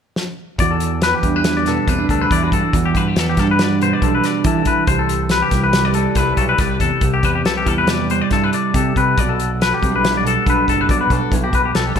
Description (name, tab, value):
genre	math rock and midwest emo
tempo	140 BPM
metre	5/4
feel	straight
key	unclear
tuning	A4 = 440 Hz
part	loose indie drum kit	drums	0.2-12.0 s	hi-hat, kick drum, snare drum	-21 LUFS	equal	none
part	mellow electric guitar	accompaniment	0.6-12.0 s	B2 to D5	-20 LUFS	right 5 dB	vibrato effect
part	twangy electric guitar	arpeggios	0.6-12.0 s	G4 to D5	-18 LUFS	left 6 dB	spring reverb, slapback echo
part	growling fingered electric bass	bass	0.6-12.0 s	F#1 to E3	-22 LUFS	equal	overdrive
room	moderate concert hall reverb, RT60 1.8 s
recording	none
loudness	-14 LUFS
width	side -7 dB against mid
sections	0.6-12.0 A section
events	drum fill 0.2-0.6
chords	0.0 N.C.; 0.6 Em9; 4.9 Cmaj7; 9.2 Gmaj7